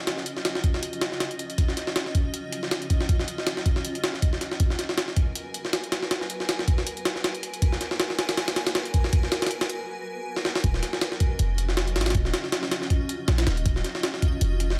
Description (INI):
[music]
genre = drum and bass, jungle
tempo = 159 BPM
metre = 4/4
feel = swing 55% on 16ths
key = Eb minor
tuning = A4 = 441 Hz
[part]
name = jungle sampler-style drum kit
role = drums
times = 0.1-14.8 s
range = hi-hat, kick drum, snare drum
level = -27 LUFS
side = equal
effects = studio reverb
[part]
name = warm 808-style bass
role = bass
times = 10.6-14.8 s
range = Eb1 to Bb1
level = -26 LUFS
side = equal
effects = none
[sound]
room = light reverb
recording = none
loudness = -26 LUFS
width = mono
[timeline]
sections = 0.0-10.6 A section; 10.6-14.8 B section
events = build-up 0.0-10.6; break 9.9-10.6; drum fill 10.4; drop 10.6-14.8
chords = none